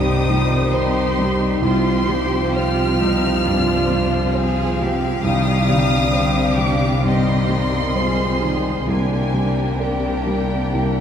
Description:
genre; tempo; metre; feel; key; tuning
cinematic, emotional film score for orchestra; 66 BPM; 4/4; rubato; C minor; A4 = 436 Hz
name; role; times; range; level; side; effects
warm studio violin section; melody; 0.0-11.0 s; G5 to F6; -26 LUFS; left 1 dB; none
rich studio violin section; second line; 0.0-11.0 s; F4 to F5; -25 LUFS; equal; none
dark baby grand piano; accompaniment; 0.0-11.0 s; C2 to C5; -24 LUFS; right 2 dB; none
rich studio viola section; accompaniment; 0.0-11.0 s; Eb3 to G4; -26 LUFS; left 1 dB; none
mellow French horn section; sustained chords; 0.0-11.0 s; Eb3 to F4; -25 LUFS; right 1 dB; none
concert harp; arpeggios; 0.0-11.0 s; C3 to F4; -26 LUFS; left 2 dB; none
rich studio double bass section; bass; 0.0-11.0 s; C2; -24 LUFS; equal; none
warm studio cello section; bass; 0.0-11.0 s; C3; -25 LUFS; left 1 dB; none
room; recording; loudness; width
wet cathedral reverb, RT60 5.8 s; in a vast, echoing space; -16 LUFS; side -8 dB against mid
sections
0.0-11.0 A section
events
none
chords
0.0 Cm; 1.6 Fsus2/C; 5.2 Cmadd9; 8.9 Gm/C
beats
0.74 | 1.64 2.57 3.46 4.35 | 5.25 6.15 7.05 7.97 | 8.89 9.81 10.75

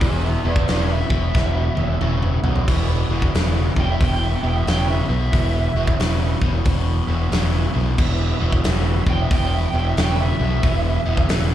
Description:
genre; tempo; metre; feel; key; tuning
blues rock power trio and southern rock; 90 BPM; 4/4; swing 63% on 8ths; E mixolydian; A4 = 439 Hz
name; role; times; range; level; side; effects
lead guitar through a small cranked amp; melody; 0.0-11.5 s; G#4 to G5; -27 LUFS; right 3 dB; overdrive, slapback echo
overdriven tonewheel organ; sustained chords; 0.0-11.5 s; E4 to E5; -33 LUFS; right 3 dB; slow rotary speaker, chorus vibrato
crunchy overdriven guitar; riff; 0.0-11.5 s; E2 to C#3; -25 LUFS; equal; slapback echo
growling fingered electric bass; bass; 0.0-11.5 s; E1 to B1; -20 LUFS; equal; overdrive
big rock drum kit; drums; 0.0-11.5 s; crash cymbal, hi-hat, kick drum, snare drum, toms; -22 LUFS; equal; none
room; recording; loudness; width
little or no reverb; live gig heard through the venue's PA, club reverb; -17 LUFS; side -12 dB against mid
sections
0.0-11.5 A section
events
lead electric guitar solo 0.0-11.5; drum fill 1.4-2.7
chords
0.0 E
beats
| 0.02 0.69 1.35 2.02 | 2.68 3.35 4.01 4.67 | 5.34 6.00 6.66 7.33 | 7.99 8.65 9.31 9.97 | 10.64 11.30

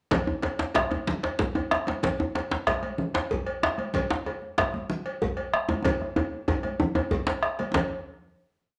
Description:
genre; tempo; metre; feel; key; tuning
west african traditional, West African drum ensemble; 126 BPM (dotted quarters); 12/8; straight; none; none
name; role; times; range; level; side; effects
bombo; percussion; 0.1-7.9 s; none; -31 LUFS; equal; none
congas; percussion; 0.1-7.9 s; none; -35 LUFS; equal; none
cowbell; percussion; 0.1-7.9 s; none; -35 LUFS; equal; none
djembe; percussion; 0.1-7.9 s; none; -36 LUFS; equal; none
djembe; percussion; 0.1-7.9 s; none; -31 LUFS; equal; none
room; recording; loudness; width
wet large studio reverb, RT60 0.8 s; none; -28 LUFS; mono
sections
0.1-7.7 A section; 7.7-8.8 final hit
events
drum fill 5.9-7.7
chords
none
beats
| 0.12 0.60 1.08 1.55 | 2.04 2.51 2.99 3.47 | 3.95 4.42 4.90 5.38 | 5.85 6.33 6.80 7.28 | 7.75

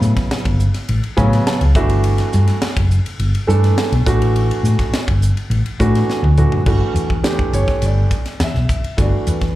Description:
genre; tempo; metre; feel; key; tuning
electric jazz fusion; 104 BPM; 4/4; straight; G lydian; A4 = 440 Hz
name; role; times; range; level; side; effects
warm grand piano; accompaniment; 0.0-9.6 s; C#3 to A5; -20 LUFS; right 2 dB; slapback echo
hollow-body short-scale fingered electric bass; bass; 0.0-9.6 s; F#1 to A2; -15 LUFS; equal; none
crisp fusion drum kit; drums; 0.0-9.5 s; crash cymbal, hi-hat, kick drum, ride cymbal, snare drum, toms; -21 LUFS; equal; none
room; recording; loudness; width
little or no reverb; live gig heard through the venue's PA, club reverb; -14 LUFS; side -15 dB against mid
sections
0.0-6.7 A section; 6.7-9.6 B section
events
grand piano fill 1.2-2.0; drum fill 6.1-6.7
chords
0.0 A13; 1.8 Gmaj7sus2; 4.1 Asus4; 6.7 Gmaj9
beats
0.31 0.88 1.46 | 2.04 2.62 3.20 3.77 | 4.35 4.93 5.51 6.09 | 6.67 7.24 7.82 8.40 | 8.98

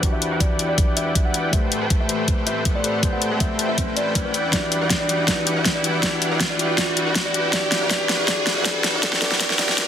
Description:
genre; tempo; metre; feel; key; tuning
future bass; 160 BPM; 4/4; half-time; E minor; A4 = 438 Hz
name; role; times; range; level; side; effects
mellow tine electric piano; accompaniment; 0.0-9.9 s; E3 to C5; -27 LUFS; left 3 dB; sidechain pumping
dark studio string section; sustained chords; 0.0-9.9 s; C2 to F#5; -35 LUFS; equal; none
dense compressed supersaw; riff; 0.0-9.9 s; A3 to G5; -26 LUFS; equal; sidechain pumping, low-pass filter
dubstep drum kit; drums; 0.0-9.9 s; hi-hat, snare drum; -22 LUFS; left 1 dB; overdrive, small room reverb
electronic kick drum; drums; 0.0-9.9 s; none; -23 LUFS; equal; overdrive, small room reverb
riser and reverse cymbal; sound effects; 1.1-9.9 s; none; -28 LUFS; right 1 dB; none
kalimba; melody; 0.1-9.9 s; B4 to F#5; -27 LUFS; equal; sidechain pumping, low-pass filter, digital delay
room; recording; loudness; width
moderate lush hall reverb, RT60 1.7 s; dense, heavily limited modern master, high-pass filter; -18 LUFS; side -9 dB against mid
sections
0.0-9.9 A section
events
build-up 0.0-9.9; filter sweep on kalimba 0.0-9.9; filter sweep 0.0-9.9; riser 1.1-9.9; drum fill 4.5-9.9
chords
0.0 Em9; 1.5 Am9; 4.3 Em9; 7.3 Cmaj9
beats
| 0.03 0.41 0.78 1.16 | 1.53 1.91 2.28 2.65 | 3.03 3.40 3.78 4.16 | 4.53 4.91 5.28 5.66 | 6.03 6.41 6.78 7.16 | 7.53 7.91 8.28 8.65 | 9.03 9.40 9.78

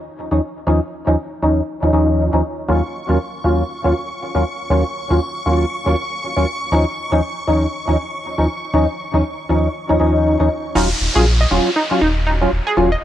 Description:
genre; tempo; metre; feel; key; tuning
house; 119 BPM; 4/4; swing 59% on 16ths; Eb minor; A4 = 443 Hz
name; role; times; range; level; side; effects
percussive organ stab; stabs; 0.3-12.9 s; Eb2 to F4; -16 LUFS; equal; ensemble chorus, tape echo
string machine, violins; texture; 2.7-10.8 s; Db6; -27 LUFS; equal; ensemble chorus
analog pluck; arpeggios; 10.8-13.0 s; Eb4 to Eb5; -20 LUFS; right 1 dB; chorus, cassette tape, tape echo
sub bass with octave; bass; 10.8-13.0 s; Eb1 to Bb1; -18 LUFS; equal; none
downlifter; sound effects; 10.8-13.0 s; none; -23 LUFS; equal; none
room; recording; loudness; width
light reverb, digital ambience; dry, gritty hardware recording, cassette tape; -15 LUFS; side -12 dB against mid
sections
0.0-10.8 A section; 10.8-13.0 B section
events
drop 10.8-13.0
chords
0.0 Dbadd9/Eb; 2.7 Ebm9; 6.7 Dbadd9/Eb; 10.8 Ebm9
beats
0.17 | 0.67 1.17 1.68 2.18 | 2.69 3.19 3.69 4.20 | 4.70 5.21 5.71 6.21 | 6.72 7.22 7.73 8.23 | 8.74 9.24 9.74 10.25 | 10.75 11.26 11.76 12.27 | 12.77

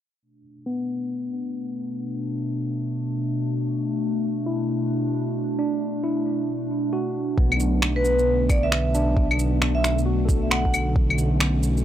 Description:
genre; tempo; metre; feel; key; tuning
future garage; 134 BPM; 4/4; swing 63% on 16ths; B minor; A4 = 440 Hz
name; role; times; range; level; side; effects
warbly tape-like pad; sustained chords; 0.8-11.8 s; B2 to D4; -26 LUFS; equal; chorus, built-in reverb, sidechain pumping
tine electric piano; accompaniment; 0.7-11.8 s; B3 to A4; -29 LUFS; left 1 dB; vintage 12-bit sampler grit, sidechain pumping, low-pass filter, tape echo
dark detuned saw bass; bass; 7.4-11.8 s; B1; -23 LUFS; equal; sidechain pumping
electronic kick drum; drums; 7.4-11.1 s; none; -21 LUFS; equal; overdrive
electronic claves, shaker and finger snaps; drums; 7.5-11.8 s; none; -24 LUFS; left 1 dB; overdrive
vibraphone with hard mallets; melody; 8.0-10.9 s; B4 to F#5; -26 LUFS; right 1 dB; vintage 12-bit sampler grit, tape echo
room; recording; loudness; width
little or no reverb; dry, gritty hardware recording, low-pass filter; -21 LUFS; side -11 dB against mid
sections
0.2-7.4 A section; 7.4-11.8 B section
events
filter sweep on ambient pad 0.2-7.4; filter sweep on tine electric piano 0.2-7.4; filter sweep 0.2-7.4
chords
0.2 Bm7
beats
| 0.21 0.66 1.11 1.56 | 2.01 2.45 2.90 3.35 | 3.80 4.25 4.69 5.14 | 5.59 6.04 6.48 6.93 | 7.38 7.83 8.28 8.72 | 9.17 9.62 10.07 10.51 | 10.96 11.41

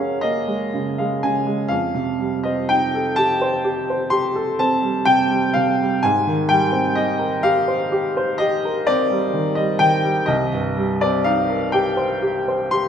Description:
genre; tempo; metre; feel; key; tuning
classical, impressionist solo piano; 42 BPM (dotted quarters); 9/8; rubato; unclear; A4 = 438 Hz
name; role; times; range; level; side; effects
clear baby grand piano; solo; 0.0-12.9 s; C2 to C6; -17 LUFS; equal; none
room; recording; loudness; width
wet recital hall reverb, RT60 1.8 s; none; -17 LUFS; side -8 dB against mid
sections
0.0-12.9 A section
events
none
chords
0.0 Gbadd9; 1.7 F9; 6.1 Abmaj9; 10.3 Cm7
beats
0.24 | 1.71 3.18 4.61 | 6.06 7.48 8.89 | 10.31 11.74

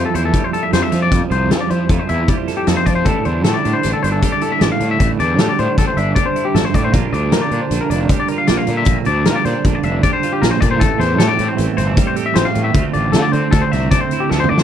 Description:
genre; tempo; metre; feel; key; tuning
math rock and midwest emo; 155 BPM; 5/4; straight; unclear; A4 = 439 Hz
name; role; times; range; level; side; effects
twelve-string electric guitar; accompaniment; 0.0-14.6 s; D2 to A4; -20 LUFS; right 10 dB; harmonic tremolo
twangy electric guitar; arpeggios; 0.0-14.6 s; G4 to F5; -20 LUFS; left 7 dB; none
fuzz fingered electric bass; bass; 0.0-14.6 s; F1 to F3; -20 LUFS; left 1 dB; overdrive
loose indie drum kit; drums; 0.1-14.6 s; hi-hat, kick drum, snare drum, toms; -18 LUFS; left 1 dB; none
room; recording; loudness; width
little or no reverb; none; -13 LUFS; side -9 dB against mid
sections
0.0-14.6 A section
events
drum fill 14.3-14.6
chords
0.0 Fmaj9; 3.1 A7sus4; 6.9 Gm7; 10.8 Am7; 12.8 Dm7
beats
0.34 0.73 | 1.12 1.51 1.90 2.29 2.67 | 3.06 3.45 3.84 4.23 4.61 | 5.00 5.39 5.78 6.17 6.55 | 6.94 7.33 7.71 8.10 8.49 | 8.88 9.27 9.65 10.04 10.43 | 10.81 11.20 11.59 11.98 12.37 | 12.75 13.14 13.53 13.92 14.31

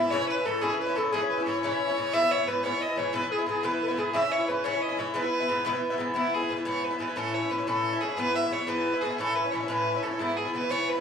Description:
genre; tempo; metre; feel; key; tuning
celtic folk, Celtic jig; 119 BPM (dotted quarters); 6/8; straight; E major; A4 = 445 Hz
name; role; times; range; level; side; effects
clear fiddle; melody; 0.0-11.0 s; E4 to E5; -29 LUFS; right 2 dB; none
bright reedy baroque flute; second line; 0.0-6.0 s; G#4 to E5; -30 LUFS; left 2 dB; none
Irish bouzouki; accompaniment; 0.0-11.0 s; G#2 to E4; -28 LUFS; left 2 dB; none
room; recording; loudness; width
wet studio ambience, RT60 0.5 s; band playing live in one room, small room reverb; -25 LUFS; side -7 dB against mid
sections
0.0-6.2 A section; 6.2-11.0 B section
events
none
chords
0.1 C#m; 2.1 E; 4.1 C#m; 5.1 E; 7.2 A; 8.2 E; 9.2 A; 10.2 E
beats
| 0.11 0.61 | 1.12 1.62 | 2.12 2.63 | 3.13 3.64 | 4.14 4.64 | 5.15 5.65 | 6.16 6.66 | 7.17 7.67 | 8.17 8.68 | 9.18 9.69 | 10.19 10.70

